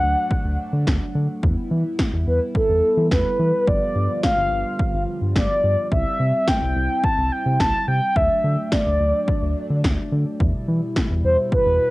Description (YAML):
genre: synth-pop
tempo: 107 BPM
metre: 4/4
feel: straight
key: E minor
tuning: A4 = 439 Hz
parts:
  - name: mellow horn-like synth lead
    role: melody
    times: 0.0-11.9 s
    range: A4 to A5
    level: -21 LUFS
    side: equal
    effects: chorus, cassette tape, plate reverb
  - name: chorused pulse-width pad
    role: sustained chords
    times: 0.0-11.9 s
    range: B2 to F4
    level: -29 LUFS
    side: equal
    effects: cassette tape
  - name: round analog bass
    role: bass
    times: 0.0-11.8 s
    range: G1 to E3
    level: -22 LUFS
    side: equal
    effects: none
  - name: 80s electronic pad drums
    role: drums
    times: 0.3-11.7 s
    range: kick drum, snare drum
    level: -22 LUFS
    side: equal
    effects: cassette tape
room: moderate studio reverb, RT60 0.6 s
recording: home recording on cassette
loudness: -18 LUFS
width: side -20 dB against mid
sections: 0.0-11.9 A section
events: none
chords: 0.0 D; 1.4 Em; 3.7 G7; 5.9 C; 8.2 D; 10.4 Em